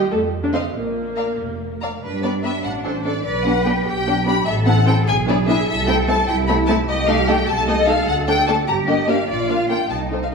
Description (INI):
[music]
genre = quick classical-period movement for string orchestra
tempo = 99 BPM (dotted quarters)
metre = 6/8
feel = rubato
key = G major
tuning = A4 = 436 Hz
[part]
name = rich symphonic cello section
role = bass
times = 0.0-10.3 s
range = Bb2 to B4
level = -24 LUFS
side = right 2 dB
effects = none
[part]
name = rich symphonic viola section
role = accompaniment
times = 0.1-10.3 s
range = A3 to A4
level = -23 LUFS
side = right 1 dB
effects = none
[part]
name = warm symphonic double bass section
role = bass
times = 0.1-10.3 s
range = F1 to G2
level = -23 LUFS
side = right 1 dB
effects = none
[part]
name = rich studio violin section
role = melody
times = 0.5-10.3 s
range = B4 to C6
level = -21 LUFS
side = left 4 dB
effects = none
[part]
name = warm symphonic violin section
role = second line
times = 0.5-10.2 s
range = D4 to F5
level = -26 LUFS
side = left 2 dB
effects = none
[sound]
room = wet concert hall reverb, RT60 1.8 s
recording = studio ambience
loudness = -16 LUFS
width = side -4 dB against mid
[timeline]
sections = 0.0-2.0 A section; 2.0-10.3 B section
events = none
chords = 0.1 F; 0.7 Bb5; 2.0 G; 2.6 D5/A; 3.2 G/B; 4.5 Am; 5.1 E7/B; 5.7 Am/C; 6.9 Adim/C; 8.1 D5; 8.7 Gm; 9.3 Bb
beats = 0.11 | 0.75 1.39 | 2.02 2.64 | 3.25 3.86 | 4.46 5.07 | 5.67 6.28 | 6.87 7.47 | 8.07 8.67 | 9.28 9.89